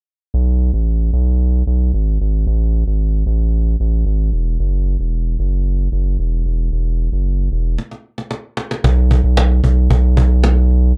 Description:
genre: piano-driven pop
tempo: 113 BPM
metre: 4/4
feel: straight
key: unclear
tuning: A4 = 442 Hz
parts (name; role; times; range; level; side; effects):
- round analog bass; bass; 0.3-10.9 s; E1 to B1; -16 LUFS; equal; none
- cajon; drums; 7.8-10.8 s; none; -22 LUFS; equal; none
room: little or no reverb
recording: dry, close 1970s-style studio recording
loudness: -17 LUFS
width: mono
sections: 0.3-8.8 A section; 8.8-11.0 B section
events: break 7.8-8.8; drum fill 7.8-8.8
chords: none

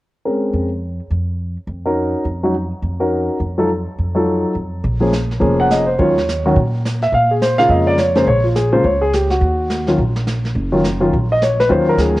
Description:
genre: jazz piano trio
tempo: 210 BPM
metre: 4/4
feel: swing 61% on 8ths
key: Bb minor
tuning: A4 = 440 Hz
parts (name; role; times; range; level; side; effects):
- warm concert grand piano; melody; 0.3-12.2 s; Db3 to Gb5; -15 LUFS; equal; cassette tape
- upright bass; bass; 0.5-12.2 s; F1 to Bb2; -20 LUFS; equal; none
- jazz brush drum kit; drums; 4.8-12.2 s; brushed snare drum, hi-hat, kick drum, snare drum; -25 LUFS; right 1 dB; cassette tape
room: light reverb, small room ambience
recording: home recording on cassette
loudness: -14 LUFS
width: side -17 dB against mid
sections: 0.3-4.8 A section; 4.8-12.2 B section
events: none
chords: 0.3 Bbm9/F; 4.8 Bbm7; 6.0 Ebm7; 7.1 Bbm7; 9.4 Ebm9

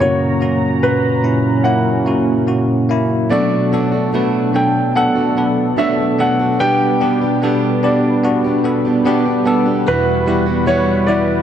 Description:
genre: pop ballad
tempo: 73 BPM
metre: 4/4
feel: straight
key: B minor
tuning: A4 = 439 Hz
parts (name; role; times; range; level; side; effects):
- warm grand piano; melody; 0.0-11.4 s; B4 to G5; -19 LUFS; right 1 dB; none
- bell-like tine electric piano; accompaniment; 0.0-11.4 s; E2 to B4; -16 LUFS; left 2 dB; medium stereo tremolo
- warm analog pad; sustained chords; 0.0-11.4 s; A#2 to A#5; -20 LUFS; right 2 dB; chorus
- fingerpicked plugged-in steel-string acoustic guitar; arpeggios; 3.3-11.4 s; B2 to G4; -20 LUFS; right 6 dB; none
room: moderate lush hall reverb, RT60 1.8 s, studio reverb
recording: dark, warm production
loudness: -13 LUFS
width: side -9 dB against mid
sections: 0.0-11.4 A section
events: none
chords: 0.0 F#; 3.3 Bm7; 6.6 G/B; 9.9 Emadd9

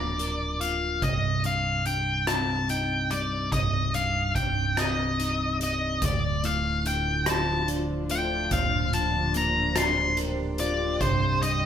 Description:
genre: post-rock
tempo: 48 BPM (dotted quarters)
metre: 6/8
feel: straight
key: C dorian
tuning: A4 = 440 Hz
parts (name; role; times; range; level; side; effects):
- octave-fuzz lead guitar; melody; 0.0-11.7 s; C5 to C6; -27 LUFS; left 2 dB; distortion
- clean electric guitar; arpeggios; 0.0-11.7 s; C2 to Bb4; -32 LUFS; left 2 dB; none
- picked electric bass; bass; 0.0-11.7 s; C1 to D1; -31 LUFS; equal; none
- soft-mallet drum kit; drums; 0.2-11.6 s; hi-hat, kick drum, rim click; -31 LUFS; right 2 dB; none
- shimmering ambient pad; sustained chords; 6.8-11.7 s; C3 to Eb5; -33 LUFS; equal; chorus, built-in reverb
room: wet stone room reverb, RT60 1.2 s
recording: band playing live in one room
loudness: -24 LUFS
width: side -9 dB against mid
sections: 0.0-11.7 A section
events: none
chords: 0.0 Bb/D; 1.0 Cm; 6.0 Dm7; 8.5 Bb6/D; 11.0 Cm

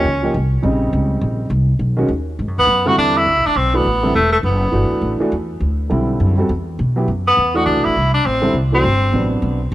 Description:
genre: modal jazz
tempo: 204 BPM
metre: 4/4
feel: swing 62% on 8ths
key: E minor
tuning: A4 = 440 Hz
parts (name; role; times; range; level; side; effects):
- clear tenor saxophone; melody; 0.0-0.5, 2.6-5.2, 7.3-9.3 s; A3 to F#4; -16 LUFS; equal; cassette tape
- warm grand piano; accompaniment; 0.0-9.6 s; C3 to A4; -20 LUFS; right 1 dB; cassette tape
- upright bass; bass; 0.0-9.7 s; E1 to B2; -18 LUFS; equal; none
room: light reverb, small room reverb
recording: home recording on cassette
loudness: -14 LUFS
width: side -14 dB against mid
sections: 0.0-3.0 A section; 3.0-9.7 B section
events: none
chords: 0.0 Bbmadd9; 1.8 B; 3.0 E9sus4; 7.7 D9sus4

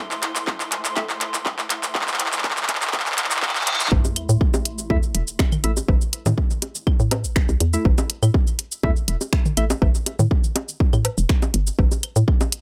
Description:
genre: minimal techno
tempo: 122 BPM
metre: 4/4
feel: straight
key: A minor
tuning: A4 = 440 Hz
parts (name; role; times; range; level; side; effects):
- granular cloud pad; texture; 0.0-3.9 s; A3 to C6; -38 LUFS; equal; built-in reverb, sidechain pumping
- house drum kit; drums; 0.1-12.6 s; finger snaps, handclaps, hi-hat, shaker; -26 LUFS; equal; overdrive
- electronic kick drum; drums; 0.5-12.4 s; none; -22 LUFS; equal; overdrive
- percussive organ stab; stabs; 1.0, 4.9-9.6 s; A3 to E5; -31 LUFS; equal; subtle chorus, tape echo
- reverse cymbal and sub drop; sound effects; 3.5-5.9 s; none; -33 LUFS; equal; none
- hollow knocking FM bass; bass; 3.9-12.2 s; E1 to A2; -22 LUFS; equal; sidechain pumping
- electronic woodblock, bongos, claves and toms; percussion; 3.9-12.5 s; none; -30 LUFS; equal; overdrive, tape echo
room: light reverb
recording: high-pass filter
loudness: -21 LUFS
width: mono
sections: 0.0-3.9 A section; 3.9-12.6 B section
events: build-up 0.0-3.9; drum fill 0.0-3.9; reverse cymbal 3.5-3.9; drop 3.9-12.6; impact 3.9-5.9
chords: 0.0 A5

